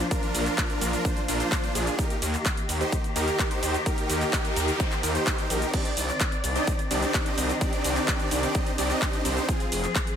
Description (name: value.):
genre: EDM, festival progressive house.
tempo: 128 BPM.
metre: 4/4.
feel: straight.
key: C minor.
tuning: A4 = 439 Hz.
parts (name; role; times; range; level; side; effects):
dark studio string section; sustained chords; 0.0-10.2 s; Eb3 to D5; -32 LUFS; left 2 dB; sidechain pumping.
big-room dance drum kit; drums; 0.0-10.2 s; crash cymbal, handclaps, hi-hat, ride cymbal, shaker; -31 LUFS; equal; overdrive, studio reverb.
supersaw chords; riff; 0.1-9.6 s; C4 to Eb5; -28 LUFS; right 1 dB; sidechain pumping, ping-pong delay.
electronic kick drum; drums; 0.1-10.0 s; none; -28 LUFS; equal; overdrive, studio reverb.
wide detuned saw bass; bass; 0.3-9.9 s; F1 to Eb2; -29 LUFS; equal; chorus, sidechain pumping.
noise sweep; sound effects; 4.4-5.7 s; none; -36 LUFS; right 1 dB; none.
room: light reverb, digital ambience.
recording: none.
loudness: -23 LUFS.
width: side -8 dB against mid.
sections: 0.0-10.2 A section.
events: noise sweep 4.4-5.7.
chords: 0.0 Bb; 2.0 Eb; 5.7 Cmadd9; 9.5 Fm.